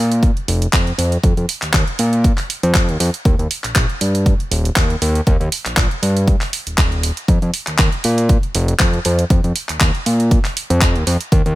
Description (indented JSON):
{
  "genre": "nu-disco, nu disco",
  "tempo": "119 BPM",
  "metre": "4/4",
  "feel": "swing 54% on 16ths",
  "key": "unclear",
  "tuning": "A4 = 440 Hz",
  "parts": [
    { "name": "fat analog bass", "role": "bass", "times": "0.0-11.5 s", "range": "Eb1 to Bb2", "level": "-16 LUFS", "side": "equal", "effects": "sidechain pumping" },
    { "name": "house drum kit", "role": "drums", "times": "0.1-11.6 s", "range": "handclaps, hi-hat", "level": "-20 LUFS", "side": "right 1 dB", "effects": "none" },
    { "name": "electronic kick drum", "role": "drums", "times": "0.2-11.4 s", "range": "none", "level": "-15 LUFS", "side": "equal", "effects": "none" }
  ],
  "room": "little or no reverb",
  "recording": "none",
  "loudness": "-14 LUFS",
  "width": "side -17 dB against mid",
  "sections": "0.0-11.6 A section",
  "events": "none",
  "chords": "none",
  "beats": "0.23 0.73 | 1.24 1.74 2.25 2.75 | 3.25 3.76 4.26 4.77 | 5.27 5.78 6.28 6.78 | 7.29 7.79 8.30 8.80 | 9.30 9.81 10.31 10.82 | 11.32"
}